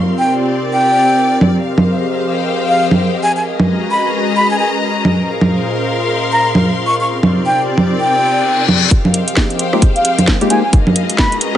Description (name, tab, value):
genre	UK garage, two-step garage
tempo	132 BPM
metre	4/4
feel	swing 61% on 16ths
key	F minor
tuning	A4 = 439 Hz
part	airy breathy pad	sustained chords	0.0-11.6 s	Bb2 to Eb5	-20 LUFS	left 1 dB	chorus, sidechain pumping
part	rich studio string section	texture	0.0-11.6 s	C4 to C6	-20 LUFS	left 1 dB	sidechain pumping
part	breathy mellow silver concert flute	melody	0.2-11.4 s	F5 to Db6	-16 LUFS	equal	low-pass filter, digital delay
part	garage drum kit	drums	1.4-11.6 s	congas, hi-hat, rim click, snare drum	-14 LUFS	right 1 dB	low-pass filter on perc, low-pass filter on hats, low-pass filter on snare
part	reverse cymbal and riser	sound effects	8.2-11.6 s	none	-20 LUFS	left 7 dB	none
part	electronic kick drum	drums	8.9-11.3 s	none	-12 LUFS	equal	none
part	percussive organ stab	stabs	9.7-11.6 s	Ab3 to G4	-17 LUFS	left 2 dB	wide subtle chorus, digital delay
room	moderate plate reverb, RT60 1.3 s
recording	nothing above 10.5 kHz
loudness	-11 LUFS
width	side -11 dB against mid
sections	0.0-8.9 A section; 8.9-11.6 B section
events	reverse cymbal 8.2-8.9; build-up 8.9-11.6; riser 8.9-11.6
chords	0.0 Cm11; 1.6 Fm11; 3.5 Abm11; 5.0 Bbm11; 7.1 Cm11; 8.9 Fm11; 10.7 Abm11